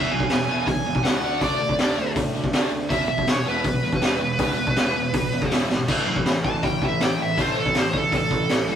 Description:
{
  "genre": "punk rock",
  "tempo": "161 BPM",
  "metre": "4/4",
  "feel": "straight",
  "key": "A major",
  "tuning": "A4 = 440 Hz",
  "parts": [
    { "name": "high-gain lead guitar", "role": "melody", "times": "0.0-8.8 s", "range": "A4 to A5", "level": "-24 LUFS", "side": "right 1 dB", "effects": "distortion" },
    { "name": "distorted electric guitar", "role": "riff", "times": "0.0-8.8 s", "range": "E2 to D4", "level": "-28 LUFS", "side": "right 3 dB", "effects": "distortion" },
    { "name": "tight distorted guitar", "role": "riff", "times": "0.0-8.8 s", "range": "E2 to D4", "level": "-32 LUFS", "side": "left 7 dB", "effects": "distortion" },
    { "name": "fuzz picked electric bass", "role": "bass", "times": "0.0-8.8 s", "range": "E1 to A2", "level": "-32 LUFS", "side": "equal", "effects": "overdrive" },
    { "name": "raw garage drum kit", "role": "drums", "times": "0.2-8.6 s", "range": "crash cymbal, hi-hat, kick drum, snare drum", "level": "-23 LUFS", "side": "equal", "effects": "none" },
    { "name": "crunchy overdriven guitar", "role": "riff", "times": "5.9-8.8 s", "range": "A2 to A4", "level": "-31 LUFS", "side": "equal", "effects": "none" }
  ],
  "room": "light reverb",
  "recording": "rough rehearsal-room recording",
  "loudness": "-20 LUFS",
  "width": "side -9 dB against mid",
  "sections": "0.0-5.9 A section; 5.9-8.8 B section",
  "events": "drum fill 5.7; lead electric guitar solo 5.9-8.8",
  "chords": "0.0 E; 1.2 D5; 2.9 E5; 5.9 A"
}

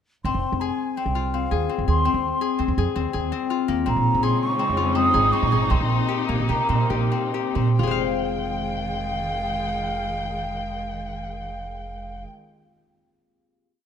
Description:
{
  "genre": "contemporary instrumental, chamber music in an uneven meter",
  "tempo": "128-166 BPM",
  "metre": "5/4",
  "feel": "straight",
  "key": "F minor",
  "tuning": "A4 = 441 Hz",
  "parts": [
    { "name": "mellow baroque flute", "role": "melody", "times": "0.2-12.2 s", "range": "F5 to Eb6", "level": "-26 LUFS", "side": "right 1 dB", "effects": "none" },
    { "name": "upright bass", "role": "bass", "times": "0.2-12.2 s", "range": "F1 to C3", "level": "-25 LUFS", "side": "right 3 dB", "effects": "none" },
    { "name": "concert harp", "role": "arpeggios", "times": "0.3-12.4 s", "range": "Bb3 to F5", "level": "-25 LUFS", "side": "left 8 dB", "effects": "none" },
    { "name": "dark chamber string section", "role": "sustained chords", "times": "3.9-12.2 s", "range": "C3 to G5", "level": "-29 LUFS", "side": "equal", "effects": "none" }
  ],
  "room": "moderate recital hall reverb, RT60 1.8 s",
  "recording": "close, detailed microphones",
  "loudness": "-21 LUFS",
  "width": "side -8 dB against mid",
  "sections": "0.2-7.8 A section; 7.8-12.5 final chord",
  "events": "slowing down 4.6-7.8",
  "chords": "0.2 Fm7; 3.9 Bbm11; 5.7 Cm7; 7.8 Fm9"
}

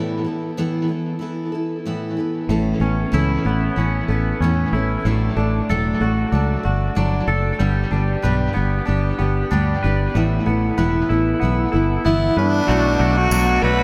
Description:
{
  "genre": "folk rock and heartland rock",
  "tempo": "94 BPM",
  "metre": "4/4",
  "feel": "straight",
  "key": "unclear",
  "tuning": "A4 = 437 Hz",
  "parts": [
    { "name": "picked steel-string acoustic guitar", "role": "accompaniment", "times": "0.0-13.8 s", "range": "G2 to A4", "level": "-24 LUFS", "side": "equal", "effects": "tape echo" },
    { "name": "twangy electric guitar", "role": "riff", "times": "2.5-13.8 s", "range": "A2 to B4", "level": "-26 LUFS", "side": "equal", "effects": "subtle chorus, tape echo" },
    { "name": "fingered electric bass", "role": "bass", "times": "2.5-13.8 s", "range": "E1 to G2", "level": "-22 LUFS", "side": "equal", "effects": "none" },
    { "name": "raspy tenor saxophone", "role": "melody", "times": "12.1-13.8 s", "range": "D4 to B4", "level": "-22 LUFS", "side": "equal", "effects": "tape echo" },
    { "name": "tambourine", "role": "percussion", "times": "13.3-13.5 s", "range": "none", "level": "-33 LUFS", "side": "equal", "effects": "tape echo" }
  ],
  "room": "light reverb",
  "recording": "echo-heavy mix",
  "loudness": "-20 LUFS",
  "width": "mono",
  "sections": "0.0-2.5 A section; 2.5-12.7 A section; 12.7-13.8 B section",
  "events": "break 0.0-2.5",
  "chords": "0.0 Asus2; 2.5 Aadd9; 5.0 D; 7.6 G; 10.1 Asus2; 12.7 Bm7"
}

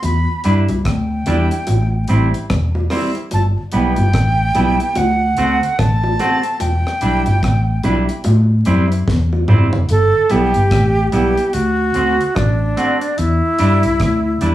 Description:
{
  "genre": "roots reggae",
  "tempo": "73 BPM",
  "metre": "4/4",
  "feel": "swing 60% on 16ths",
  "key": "G major",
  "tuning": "A4 = 438 Hz",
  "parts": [
    { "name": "breathy bright concert flute", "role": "melody", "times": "0.0-14.5 s", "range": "D4 to B5", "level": "-18 LUFS", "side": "right 1 dB", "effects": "none" },
    { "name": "vintage muted fingered electric bass", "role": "bass", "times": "0.0-14.5 s", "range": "E1 to A2", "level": "-16 LUFS", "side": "equal", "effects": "none" },
    { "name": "deep reggae drum kit", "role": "drums", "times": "0.0-14.5 s", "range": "hi-hat, kick drum, rim click, snare drum, toms", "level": "-20 LUFS", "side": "equal", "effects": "none" },
    { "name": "bongos", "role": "percussion", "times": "0.0-9.7 s", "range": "none", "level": "-26 LUFS", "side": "equal", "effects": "none" },
    { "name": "semi-hollow electric guitar", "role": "accompaniment", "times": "0.4-14.5 s", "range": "G3 to F#4", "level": "-20 LUFS", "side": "right 2 dB", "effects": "none" }
  ],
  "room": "moderate large studio reverb, RT60 0.8 s",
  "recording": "band playing live in one room, vinyl crackle, studio reverb",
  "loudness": "-13 LUFS",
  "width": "side -14 dB against mid",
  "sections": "0.0-9.9 A section; 9.9-14.5 A section",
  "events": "drum fill 9.1-9.9",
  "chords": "0.0 Em7; 1.7 Am7; 3.3 G6; 5.0 D7; 6.6 Em7; 8.2 Am7; 9.9 G6; 11.5 D7; 13.2 Em7"
}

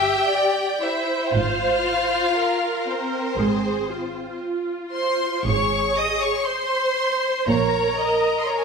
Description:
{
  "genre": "classical, slow romantic movement for string orchestra",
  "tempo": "59 BPM",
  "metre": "4/4",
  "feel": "rubato",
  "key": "F minor",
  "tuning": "A4 = 440 Hz",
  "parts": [
    { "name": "rich symphonic violin section", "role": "melody", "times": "0.0-8.6 s", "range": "C5 to Eb6", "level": "-24 LUFS", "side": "left 3 dB", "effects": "none" },
    { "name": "warm symphonic violin section", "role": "second line", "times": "0.0-8.6 s", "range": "C4 to Eb5", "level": "-24 LUFS", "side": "equal", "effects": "none" },
    { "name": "warm symphonic viola section", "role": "accompaniment", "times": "0.0-8.6 s", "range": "F4 to E5", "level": "-25 LUFS", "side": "right 3 dB", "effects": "none" },
    { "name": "rich studio double bass section", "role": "bass", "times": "0.0-8.3 s", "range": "Ab1 to Bb1", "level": "-29 LUFS", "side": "right 3 dB", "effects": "none" },
    { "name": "warm symphonic cello section", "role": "bass", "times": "0.0-8.3 s", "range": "G2 to Bb2", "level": "-26 LUFS", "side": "right 3 dB", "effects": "none" }
  ],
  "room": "wet recital hall reverb, RT60 1.4 s",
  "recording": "minimal, uncompressed stereo recording",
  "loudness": "-20 LUFS",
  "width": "side -5 dB against mid",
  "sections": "0.0-8.6 A section",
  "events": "none",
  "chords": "0.0 Cadd9/G; 1.3 Fm/Ab; 7.5 Bbm"
}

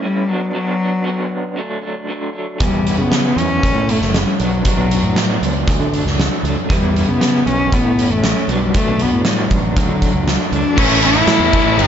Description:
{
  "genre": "quiet-loud alternative rock",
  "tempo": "117 BPM",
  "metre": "4/4",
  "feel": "straight",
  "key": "unclear",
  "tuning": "A4 = 440 Hz",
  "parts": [
    { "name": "warm cello", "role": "melody", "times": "0.0-11.9 s", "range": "F#3 to E4", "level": "-18 LUFS", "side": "left 2 dB", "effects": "slapback echo" },
    { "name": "electric guitar through a small old amp", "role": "arpeggios", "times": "0.0-10.8 s", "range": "A2 to E4", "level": "-23 LUFS", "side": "right 2 dB", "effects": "tremolo" },
    { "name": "picked electric bass", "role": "bass", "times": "2.6-11.9 s", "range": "F#1 to D3", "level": "-20 LUFS", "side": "equal", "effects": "none" },
    { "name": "oversized low-tuned drum kit", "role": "drums", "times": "2.6-11.9 s", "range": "crash cymbal, hi-hat, kick drum, ride cymbal, snare drum", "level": "-17 LUFS", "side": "right 1 dB", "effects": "none" },
    { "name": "crunchy overdriven guitar", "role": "riff", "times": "10.8-11.9 s", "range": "G2 to A3", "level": "-22 LUFS", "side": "equal", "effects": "none" },
    { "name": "distorted electric guitar", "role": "riff", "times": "10.8-11.9 s", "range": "A2 to A4", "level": "-19 LUFS", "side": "left 14 dB", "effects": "distortion" },
    { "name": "fuzz guitar", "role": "riff", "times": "10.8-11.9 s", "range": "A2 to G4", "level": "-21 LUFS", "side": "right 15 dB", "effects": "distortion" }
  ],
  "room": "moderate small room reverb, RT60 0.6 s",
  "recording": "nothing above 7.6 kHz",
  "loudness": "-14 LUFS",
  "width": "side -9 dB against mid",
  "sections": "0.0-10.8 A section; 10.8-11.9 B section",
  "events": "none",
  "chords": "0.3 Bm; 1.6 D; 2.6 Em; 3.6 A; 4.4 Bm; 5.7 D; 6.7 Em; 7.7 A; 8.5 Bm; 9.8 D; 10.8 A"
}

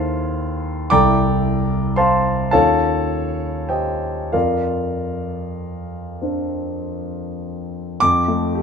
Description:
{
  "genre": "classical, impressionist solo piano",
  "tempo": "31-41 BPM (dotted quarters)",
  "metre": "6/8",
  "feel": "rubato",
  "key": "F major",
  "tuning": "A4 = 440 Hz",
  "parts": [
    { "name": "warm concert grand piano", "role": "solo", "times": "0.0-8.6 s", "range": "C2 to D6", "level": "-18 LUFS", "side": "equal", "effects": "none" }
  ],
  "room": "light reverb",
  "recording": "minimal, uncompressed stereo recording",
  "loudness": "-17 LUFS",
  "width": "side -6 dB against mid",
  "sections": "0.0-8.0 A section",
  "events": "none",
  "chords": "0.0 Am/Eb; 0.9 C13; 2.5 Eb9; 4.3 F5; 8.0 F6"
}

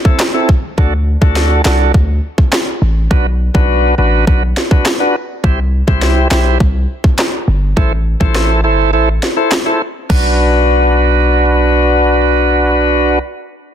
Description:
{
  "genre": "dancehall",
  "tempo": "103 BPM",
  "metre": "4/4",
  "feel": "straight",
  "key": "B phrygian",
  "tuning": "A4 = 440 Hz",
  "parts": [
    { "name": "bright tonewheel organ", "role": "accompaniment", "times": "0.0-13.2 s", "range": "C4 to C5", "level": "-14 LUFS", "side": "equal", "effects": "overdrive, slow rotary speaker, sidechain pumping" },
    { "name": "island pop drum kit", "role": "drums", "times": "0.1-10.2 s", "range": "crash cymbal, handclaps, kick drum, rim click, snare drum", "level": "-14 LUFS", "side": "equal", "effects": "overdrive" },
    { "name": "hard-hitting 808-style bass", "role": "bass", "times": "0.8-13.2 s", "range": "G1 to D2", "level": "-13 LUFS", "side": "equal", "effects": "none" }
  ],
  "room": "digital ambience",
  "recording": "dense, heavily limited modern master",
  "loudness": "-10 LUFS",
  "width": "side -9 dB against mid",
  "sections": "0.0-10.1 A section; 10.1-12.4 B section",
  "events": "kick muted 8.9-10.1",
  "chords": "0.0 Am; 0.8 D; 3.1 Bm; 5.4 C; 7.8 Am; 10.1 Bm"
}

